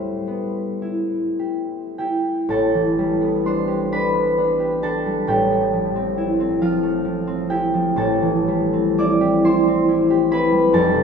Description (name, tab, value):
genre	classical, solo harp piece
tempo	44 BPM (dotted quarters)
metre	6/8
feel	uneven beats, rubato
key	A minor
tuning	A4 = 440 Hz
part	concert harp	solo	0.0-11.0 s	F1 to D6	-17 LUFS	equal	none
room	wet cathedral reverb, RT60 6.3 s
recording	minimal, uncompressed stereo recording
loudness	-17 LUFS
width	side -6 dB against mid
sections	0.0-2.5 A section; 2.5-11.0 B section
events	none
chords	0.0 Am9; 2.5 Am11; 5.3 Fmaj7/A; 8.0 Am7